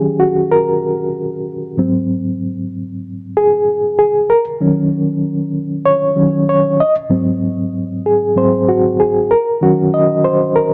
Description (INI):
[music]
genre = soul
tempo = 96 BPM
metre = 4/4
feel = swing 54% on 16ths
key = Eb dorian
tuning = A4 = 440 Hz
[part]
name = reed electric piano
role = solo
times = 0.0-10.7 s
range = Ab2 to Eb5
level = -15 LUFS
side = equal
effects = fast tremolo
[sound]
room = light reverb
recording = none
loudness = -15 LUFS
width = mono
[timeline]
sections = 0.0-10.7 A section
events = reed electric piano solo 0.0-10.7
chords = 0.0 Ebm7; 1.8 Ab7; 4.3 Ebm7; 6.8 Ab7; 9.3 Ebm7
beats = 0.54 1.16 | 1.79 2.42 3.04 3.67 | 4.30 4.93 5.55 6.18 | 6.81 7.43 8.06 8.69 | 9.31 9.94 10.56